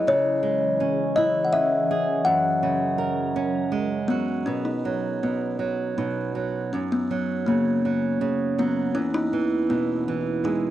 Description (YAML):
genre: children's music, lullaby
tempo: 81 BPM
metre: 3/4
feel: rubato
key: B major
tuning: A4 = 440 Hz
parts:
  - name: kalimba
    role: melody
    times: 0.0-10.7 s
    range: A#3 to F#5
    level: -24 LUFS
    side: left 2 dB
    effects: none
  - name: flamenco guitar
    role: accompaniment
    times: 0.0-10.7 s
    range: E2 to A#4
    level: -26 LUFS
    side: right 5 dB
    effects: none
  - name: glassy FM pad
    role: sustained chords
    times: 0.0-4.5 s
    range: E3 to A#4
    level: -33 LUFS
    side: left 3 dB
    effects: ensemble chorus, built-in reverb
room: light reverb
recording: dry, close 1970s-style studio recording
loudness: -22 LUFS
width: side -13 dB against mid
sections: 0.0-4.5 A section; 4.5-10.7 B section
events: none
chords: 0.1 C#m; 2.2 F#add9; 4.5 B; 6.7 F#; 9.0 E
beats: | 0.06 0.79 1.52 | 2.25 2.98 3.72 | 4.47 5.23 5.99 | 6.74 7.48 8.22 | 8.97 9.71 10.45